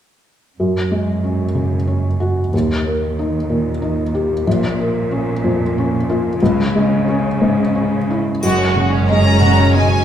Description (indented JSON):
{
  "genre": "cinematic, emotional film score for orchestra",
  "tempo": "92 BPM",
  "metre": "3/4",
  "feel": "rubato",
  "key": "F# major",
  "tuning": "A4 = 440 Hz",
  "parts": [
    { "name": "felt-muted upright piano", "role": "accompaniment", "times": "0.6-10.0 s", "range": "A#1 to G4", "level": "-17 LUFS", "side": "left 1 dB", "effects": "none" },
    { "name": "warm studio cello section", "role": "bass", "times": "0.6-10.0 s", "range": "D#2 to C#3", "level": "-20 LUFS", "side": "right 1 dB", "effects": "none" },
    { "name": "warm studio violin section", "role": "second line", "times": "8.4-10.0 s", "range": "G#3 to F#4", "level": "-18 LUFS", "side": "right 1 dB", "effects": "none" },
    { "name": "rich studio viola section", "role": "accompaniment", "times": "8.4-10.0 s", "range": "G#3 to C#4", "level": "-21 LUFS", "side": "right 3 dB", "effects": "none" },
    { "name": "warm studio double bass section", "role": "bass", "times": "8.4-10.0 s", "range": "F#1", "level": "-21 LUFS", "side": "right 3 dB", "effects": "none" },
    { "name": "triangle", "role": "percussion", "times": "8.4-9.7 s", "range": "none", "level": "-34 LUFS", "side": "left 2 dB", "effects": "none" },
    { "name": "clear studio violin section", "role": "melody", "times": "9.1-10.0 s", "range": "G#5 to A#5", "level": "-18 LUFS", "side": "left 2 dB", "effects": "none" }
  ],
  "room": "wet recital hall reverb, RT60 1.4 s",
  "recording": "heard from further back in the room",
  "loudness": "-14 LUFS",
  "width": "side -10 dB against mid",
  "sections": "0.6-8.4 A section; 8.4-10.0 B section",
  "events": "none",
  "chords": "0.6 F#sus2; 2.5 D#; 4.5 A#m; 6.4 C#m; 8.4 F#sus2",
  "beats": "| 0.59 1.24 1.88 | 2.53 3.17 3.81 | 4.46 5.11 5.75 | 6.40 7.06 7.74 | 8.44 9.10 9.76"
}